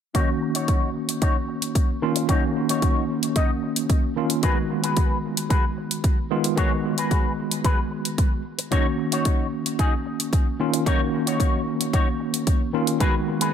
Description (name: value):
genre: nu-disco, nu disco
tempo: 112 BPM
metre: 4/4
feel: straight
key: Eb minor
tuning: A4 = 441 Hz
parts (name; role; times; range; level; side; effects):
- tine electric piano; accompaniment; 0.1-13.5 s; Eb3 to Gb4; -25 LUFS; right 1 dB; overdrive, fast stereo tremolo, tape echo
- electric guitar with an envelope filter; riff; 0.1-13.5 s; Eb4 to Eb5; -28 LUFS; left 4 dB; analog chorus, low-pass filter, tape echo
- electronic hi-hat; drums; 0.1-13.5 s; none; -28 LUFS; equal; none
- electronic kick drum; drums; 0.1-13.1 s; none; -21 LUFS; equal; none
room: light reverb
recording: echo-heavy mix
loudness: -20 LUFS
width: side -8 dB against mid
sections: 0.1-13.5 A section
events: filter sweep on clean electric guitar 0.1-13.5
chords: 0.1 Ebm7; 4.4 Abm7; 8.7 Ebm7; 13.0 Abm7